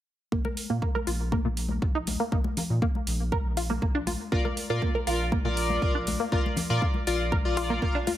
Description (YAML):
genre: progressive house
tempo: 120 BPM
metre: 4/4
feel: straight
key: Bb major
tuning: A4 = 440 Hz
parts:
  - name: tight sequenced synth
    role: arpeggios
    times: 0.3-8.1 s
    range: Bb2 to Bb4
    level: -32 LUFS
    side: right 1 dB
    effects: chorus, phaser, sidechain pumping, dub echo
  - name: round analog bass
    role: bass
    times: 0.3-7.9 s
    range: F1 to Bb2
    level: -30 LUFS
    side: equal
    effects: sidechain pumping
  - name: electronic kick drum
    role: drums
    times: 0.3-7.9 s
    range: none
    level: -28 LUFS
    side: equal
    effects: studio ambience
  - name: congas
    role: percussion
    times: 0.4-8.2 s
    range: none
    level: -36 LUFS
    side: left 4 dB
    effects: sidechain pumping on perc
  - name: electronic hi-hat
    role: drums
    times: 0.6-8.2 s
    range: none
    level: -36 LUFS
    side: right 2 dB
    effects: sidechain pumping on hats, studio ambience
  - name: chorused polysynth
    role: stabs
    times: 4.3-8.0 s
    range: F4 to F5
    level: -29 LUFS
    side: left 2 dB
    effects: sidechain pumping, dub echo
room: light reverb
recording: heavily compressed radio sound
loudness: -25 LUFS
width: side -12 dB against mid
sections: 0.3-8.2 A section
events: none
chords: 0.3 N.C.; 4.3 Bb